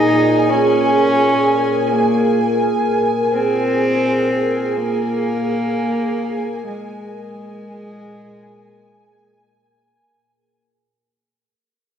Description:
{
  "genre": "ambient",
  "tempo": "free time",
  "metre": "none",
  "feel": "none",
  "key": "unclear",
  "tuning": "A4 = 440 Hz",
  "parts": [
    { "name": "rich cello", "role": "melody", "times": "0.0-9.6 s", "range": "Ab3 to Eb4", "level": "-19 LUFS", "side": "equal", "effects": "cassette tape, analog delay" },
    { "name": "warbly tape-like pad", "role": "sustained chords", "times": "0.0-10.6 s", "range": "Bb2 to Bb4", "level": "-19 LUFS", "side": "right 1 dB", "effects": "chorus, built-in reverb, cassette tape" },
    { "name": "dark studio violin section", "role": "texture", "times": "0.0-10.6 s", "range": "Ab5", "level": "-23 LUFS", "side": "right 1 dB", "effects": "cassette tape" }
  ],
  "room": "wet spring reverb, RT60 1.9 s, small room ambience",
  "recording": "home recording on cassette",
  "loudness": "-15 LUFS",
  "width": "side -8 dB against mid",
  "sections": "0.0-10.6 A section",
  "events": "fade-out 0.3-10.6",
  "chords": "0.0 Bb7(no3)",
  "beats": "free time"
}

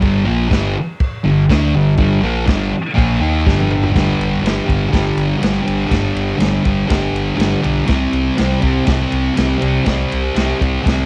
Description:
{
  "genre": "garage rock duo or trio",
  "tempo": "122 BPM",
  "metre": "4/4",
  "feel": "straight",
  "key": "G minor",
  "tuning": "A4 = 440 Hz",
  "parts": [
    { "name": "thick fuzz guitar", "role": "riff", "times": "0.0-11.1 s", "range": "G2 to Eb4", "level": "-18 LUFS", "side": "equal", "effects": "distortion" },
    { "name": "fingered electric bass", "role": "bass", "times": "0.0-11.0 s", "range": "G1 to Eb2", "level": "-24 LUFS", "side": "equal", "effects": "tube saturation" },
    { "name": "vintage drum kit", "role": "drums", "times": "0.0-11.0 s", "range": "crash cymbal, kick drum, ride cymbal, snare drum, toms", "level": "-21 LUFS", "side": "equal", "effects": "cassette tape" }
  ],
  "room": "studio reverb",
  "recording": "home recording on cassette",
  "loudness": "-16 LUFS",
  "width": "mono",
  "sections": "0.0-3.9 A section; 3.9-11.1 B section",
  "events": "drum fill 3.5-3.9",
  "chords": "0.0 Gm; 3.9 G5; 7.9 C5",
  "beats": "| 0.03 0.52 1.00 1.50 | 1.98 2.48 2.96 3.46 | 3.95 4.44 4.93 5.42 | 5.92 6.41 6.90 7.39 | 7.89 8.38 8.88 9.37 | 9.86 10.36 10.85"
}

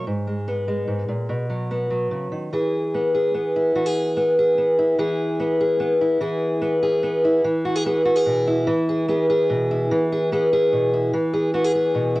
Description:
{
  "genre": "folk",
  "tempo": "146 BPM",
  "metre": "3/4",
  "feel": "straight",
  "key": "unclear",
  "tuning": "A4 = 435 Hz",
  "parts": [
    { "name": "fingerpicked steel-string acoustic guitar", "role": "solo", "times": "0.0-12.2 s", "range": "G#2 to G#4", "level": "-19 LUFS", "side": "equal", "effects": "cassette tape" }
  ],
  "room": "small room reverb",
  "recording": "home recording on cassette, nothing above 10.6 kHz",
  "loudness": "-19 LUFS",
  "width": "side -19 dB against mid",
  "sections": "0.0-2.5 A section; 2.5-7.5 B section; 7.5-12.2 C section",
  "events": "build-up 2.5-7.5",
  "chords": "0.1 G#m; 1.3 B; 2.5 E",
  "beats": "| 0.06 0.47 0.89 | 1.30 1.71 2.12 | 2.53 2.94 3.35 | 3.76 4.17 4.58 | 4.99 5.40 5.81 | 6.22 6.63 7.04 | 7.45 7.86 8.27 | 8.68 9.09 9.50 | 9.91 10.31 10.72 | 11.13 11.54 11.95"
}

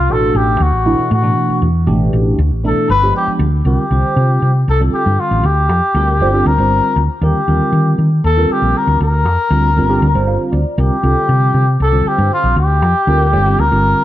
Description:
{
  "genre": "electric jazz fusion",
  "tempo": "236 BPM (eighths)",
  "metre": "7/8",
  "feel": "straight",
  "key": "unclear",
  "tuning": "A4 = 441 Hz",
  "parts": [
    { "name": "trumpet with cup mute", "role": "melody", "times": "0.0-14.0 s", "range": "F4 to B4", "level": "-16 LUFS", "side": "left 2 dB", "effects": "none" },
    { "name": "hollow-body short-scale fingered electric bass", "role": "bass", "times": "0.0-13.9 s", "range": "G1 to Eb3", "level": "-14 LUFS", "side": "equal", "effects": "none" },
    { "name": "tine electric piano", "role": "accompaniment", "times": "0.1-14.0 s", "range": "B2 to F5", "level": "-18 LUFS", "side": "right 2 dB", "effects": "phaser" }
  ],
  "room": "light reverb, studio reverb",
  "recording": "dark, warm production",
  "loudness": "-11 LUFS",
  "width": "side -13 dB against mid",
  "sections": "0.0-3.7 A section; 3.7-14.0 B section",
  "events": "muted trumpet solo 0.0-3.7; tine electric piano fill 10.0-10.8",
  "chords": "0.1 Asus2; 2.9 G7b9; 3.7 Csus4; 5.4 Bb6; 7.2 Ebmaj9; 9.0 Bb6; 10.8 C9sus4; 12.6 Bb6",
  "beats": "| 0.10 0.35 0.61 0.86 1.12 1.37 1.62 | 1.88 2.13 2.39 2.64 2.90 3.15 3.40 | 3.66 3.91 4.17 4.42 4.68 4.93 5.19 | 5.44 5.70 5.95 6.21 6.46 6.72 6.97 | 7.22 7.48 7.73 7.99 8.24 8.50 8.75 | 9.01 9.26 9.52 9.77 10.03 10.28 10.53 | 10.79 11.04 11.30 11.55 11.80 12.06 12.31 | 12.57 12.82 13.08 13.33 13.58 13.84"
}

